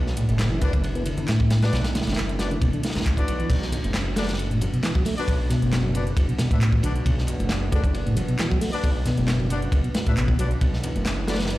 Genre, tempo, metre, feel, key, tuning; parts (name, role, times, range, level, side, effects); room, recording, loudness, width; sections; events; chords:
breakbeat, breaks; 135 BPM; 4/4; swing 53% on 16ths; B minor; A4 = 440 Hz
dark analog pad; sustained chords; 0.0-11.6 s; B3 to F#4; -34 LUFS; right 1 dB; chorus, sidechain pumping
detuned saw bass; bass; 0.0-11.6 s; F#1 to B1; -26 LUFS; equal
crunchy breakbeat drum kit; drums; 0.1-11.6 s; crash cymbal, hi-hat, kick drum, ride cymbal, snare drum; -25 LUFS; equal
mellow tonewheel organ; riff; 0.2-11.4 s; A2 to B3; -25 LUFS; equal; chorus vibrato, slow rotary speaker, tube saturation, tape echo
house drum kit; drums; 0.2-11.6 s; handclaps, hi-hat; -35 LUFS; equal
congas; percussion; 0.2-11.0 s; -35 LUFS; equal
warm horn section; stabs; 0.6-11.4 s; D4 to E5; -33 LUFS; left 3 dB; tape echo
light reverb, studio ambience; played on a big sound system in a bare room, large studio reverb; -20 LUFS; side -17 dB against mid
0.0-3.5 A section; 3.5-11.6 A section
drop 0.0-3.5, 3.5-11.6
0.0 Bm